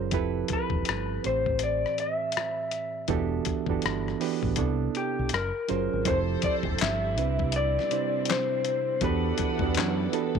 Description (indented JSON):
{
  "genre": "R&B, neo-soul",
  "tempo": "81 BPM",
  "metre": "4/4",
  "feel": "swing 62% on 16ths",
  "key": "E minor",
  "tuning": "A4 = 441 Hz",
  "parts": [
    { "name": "reed electric piano", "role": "accompaniment", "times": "0.0-10.4 s", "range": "A2 to B#4", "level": "-30 LUFS", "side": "right 13 dB", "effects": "none" },
    { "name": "deep dub fingered electric bass", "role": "bass", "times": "0.0-10.4 s", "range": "E1 to F#2", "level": "-30 LUFS", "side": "left 1 dB", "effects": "none" },
    { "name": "dusty soul sampler-style drum kit", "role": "drums", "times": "0.1-10.4 s", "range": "handclaps, hi-hat, kick drum, rim click, snare drum", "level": "-31 LUFS", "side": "left 5 dB", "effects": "none" },
    { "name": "electric guitar through a small old amp", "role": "melody", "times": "0.5-10.4 s", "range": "G4 to E5", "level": "-30 LUFS", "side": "left 4 dB", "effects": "none" },
    { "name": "warm studio string section", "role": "sustained chords", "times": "6.0-10.4 s", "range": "C3 to F#5", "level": "-36 LUFS", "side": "equal", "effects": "none" }
  ],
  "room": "light reverb",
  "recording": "1960s-style stereo",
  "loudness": "-25 LUFS",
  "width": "side -6 dB against mid",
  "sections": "0.0-6.0 A section; 6.0-10.4 B section",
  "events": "none",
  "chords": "0.1 Fmaj9#11; 1.2 Am7; 3.1 Em11; 4.6 Cmaj13; 5.3 F#maj9#11; 6.0 Fmaj9; 7.2 Cmaj7; 9.0 Em11"
}